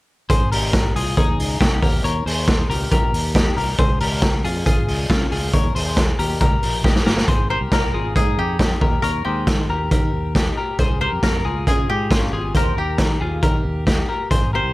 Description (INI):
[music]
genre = jangly indie pop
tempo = 137 BPM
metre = 4/4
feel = straight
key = Ab major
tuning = A4 = 440 Hz
[part]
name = twelve-string electric guitar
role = arpeggios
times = 0.3-14.7 s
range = Ab3 to Db5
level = -24 LUFS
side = left 3 dB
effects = none
[part]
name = fingered electric bass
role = bass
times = 0.3-14.7 s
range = G1 to Eb3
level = -24 LUFS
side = equal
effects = none
[part]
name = raw garage drum kit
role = drums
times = 0.3-14.4 s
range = hi-hat, kick drum, snare drum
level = -18 LUFS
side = equal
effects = none
[part]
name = koto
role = melody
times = 7.5-14.7 s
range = G4 to C5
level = -25 LUFS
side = left 1 dB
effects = none
[sound]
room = little or no reverb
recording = none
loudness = -17 LUFS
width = side -19 dB against mid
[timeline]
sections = 0.3-7.3 A section; 7.3-14.7 B section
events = drum fill 6.8-7.3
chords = 0.3 Abmaj7; 1.8 Eb7; 3.8 Dbmaj7; 5.5 Eb7; 7.3 Abmaj7; 8.8 Eb; 10.8 Dbmaj7; 12.6 Eb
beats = | 0.30 0.73 1.17 1.60 | 2.04 2.48 2.91 3.35 | 3.79 4.22 4.66 5.10 | 5.53 5.97 6.41 6.84 | 7.28 7.72 8.16 8.60 | 9.04 9.47 9.91 10.35 | 10.79 11.23 11.67 12.11 | 12.55 12.99 13.43 13.87 | 14.31